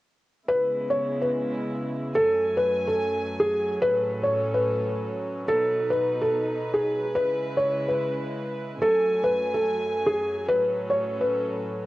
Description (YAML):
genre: hip hop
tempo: 144 BPM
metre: 4/4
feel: half-time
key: C# minor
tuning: A4 = 440 Hz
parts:
  - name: felt-muted upright piano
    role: melody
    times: 0.5-11.9 s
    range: G#4 to C#5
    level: -23 LUFS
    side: equal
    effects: cassette tape, tape echo
  - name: warm studio string section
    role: sustained chords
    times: 0.5-11.9 s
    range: F#2 to G#5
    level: -30 LUFS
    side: right 1 dB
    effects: cassette tape
room: light reverb, small room ambience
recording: home recording on cassette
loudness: -23 LUFS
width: side -17 dB against mid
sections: 0.5-11.9 A section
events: none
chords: 0.5 C#m7; 2.1 F#madd9; 3.8 A6; 5.5 B; 7.2 C#m7; 8.8 F#madd9; 10.5 A6